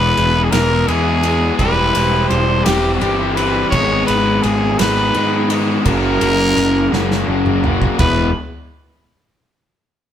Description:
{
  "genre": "indie rock",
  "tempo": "56 BPM (dotted quarters)",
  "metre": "6/8",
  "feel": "straight",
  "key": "E lydian",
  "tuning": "A4 = 440 Hz",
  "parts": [
    { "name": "growling trumpet", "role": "melody", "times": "0.0-8.3 s", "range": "F#4 to C#5", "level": "-18 LUFS", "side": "equal", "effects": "none" },
    { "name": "crunchy overdriven guitar", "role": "riff", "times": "0.0-8.3 s", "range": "E2 to G#4", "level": "-19 LUFS", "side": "left 5 dB", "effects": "none" },
    { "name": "raw garage guitar", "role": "riff", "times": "0.0-8.3 s", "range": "F#2 to E4", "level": "-21 LUFS", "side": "right 3 dB", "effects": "overdrive" },
    { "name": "fuzz picked electric bass", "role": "bass", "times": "0.0-8.3 s", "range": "E1 to G#2", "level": "-20 LUFS", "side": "right 1 dB", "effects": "overdrive" },
    { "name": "loose indie drum kit", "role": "drums", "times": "0.2-8.2 s", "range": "kick drum, ride cymbal, snare drum, toms", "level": "-22 LUFS", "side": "equal", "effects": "none" }
  ],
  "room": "moderate stone room reverb, RT60 1.1 s",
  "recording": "band playing live in one room",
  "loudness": "-13 LUFS",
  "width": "side -10 dB against mid",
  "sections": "0.0-8.0 A section; 8.0-10.1 B section",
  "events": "drum fill 6.9-8.0",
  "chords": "0.0 E; 1.6 C/E; 3.7 G#m; 5.9 F#; 8.0 E"
}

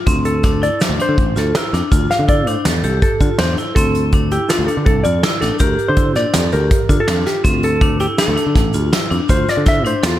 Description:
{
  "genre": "progressive instrumental, band music in an uneven meter",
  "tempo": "162 BPM",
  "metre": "5/4",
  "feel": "straight",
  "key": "unclear",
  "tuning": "A4 = 440 Hz",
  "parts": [
    { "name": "vibraphone with hard mallets", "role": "arpeggios", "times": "0.1-10.2 s", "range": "C4 to A4", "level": "-21 LUFS", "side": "left 3 dB", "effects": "slapback echo" },
    { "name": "picked electric bass", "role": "bass", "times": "0.1-10.2 s", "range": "A1 to D3", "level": "-19 LUFS", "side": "equal", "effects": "none" },
    { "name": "soft brush drum kit", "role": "drums", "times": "0.1-10.1 s", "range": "hi-hat, kick drum, snare drum", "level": "-17 LUFS", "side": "equal", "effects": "none" },
    { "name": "tube shaker", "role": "percussion", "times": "0.1-10.2 s", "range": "none", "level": "-35 LUFS", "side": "right 4 dB", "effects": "none" },
    { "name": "hollow-body jazz guitar", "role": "melody", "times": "0.3-10.2 s", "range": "F4 to F5", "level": "-20 LUFS", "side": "equal", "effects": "slapback echo" }
  ],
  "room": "light reverb, small room ambience",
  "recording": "none",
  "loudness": "-13 LUFS",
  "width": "side -13 dB against mid",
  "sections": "0.0-10.2 A section",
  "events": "hollow-body jazz guitar solo 0.0-10.2",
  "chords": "0.1 Amadd11; 1.9 Fmaj7/D; 3.8 Dm7; 5.6 Gm7/D; 7.5 Amadd11; 9.3 Fmaj7/D"
}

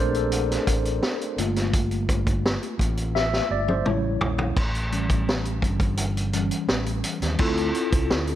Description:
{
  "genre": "lush 1970s-style soul",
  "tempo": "85 BPM",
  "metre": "4/4",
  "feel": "straight",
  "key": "unclear",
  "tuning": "A4 = 440 Hz",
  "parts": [
    { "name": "mellow tine electric piano", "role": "accompaniment", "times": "0.0-8.4 s", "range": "E3 to E5", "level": "-27 LUFS", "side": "left 1 dB", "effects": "medium stereo tremolo" },
    { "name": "overdriven fingered electric bass", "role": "bass", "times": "0.0-8.4 s", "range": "G1 to Eb2", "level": "-27 LUFS", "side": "equal", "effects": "none" },
    { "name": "vintage drum kit", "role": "drums", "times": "0.1-8.4 s", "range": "crash cymbal, hi-hat, kick drum, snare drum, toms", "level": "-25 LUFS", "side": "equal", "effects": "none" }
  ],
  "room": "small room ambience",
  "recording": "none",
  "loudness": "-22 LUFS",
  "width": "side -12 dB against mid",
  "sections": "0.0-4.6 A section; 4.6-7.4 B section",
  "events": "tine electric piano solo 0.0-4.6; drum fill 3.1-4.6",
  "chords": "0.0 Bbmaj9; 1.4 Gm7; 3.9 A7; 7.4 Dm7"
}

